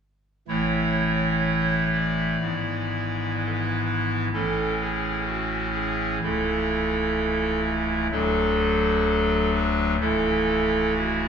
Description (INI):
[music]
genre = classical, chorale-style piece for pipe organ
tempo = 63 BPM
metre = 4/4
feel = rubato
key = A major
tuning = A4 = 440 Hz
[part]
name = pipe organ, clarinet reed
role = solo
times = 0.5-11.3 s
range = C#1 to D5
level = -21 LUFS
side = equal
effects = none
[sound]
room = wet stone room reverb, RT60 1.4 s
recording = heard from further back in the room, faint mains hum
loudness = -22 LUFS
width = side -7 dB against mid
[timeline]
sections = 0.5-11.3 A section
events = none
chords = 0.5 A; 2.4 E7/G#; 4.3 A; 6.2 A/C#; 8.1 D; 10.0 A/C#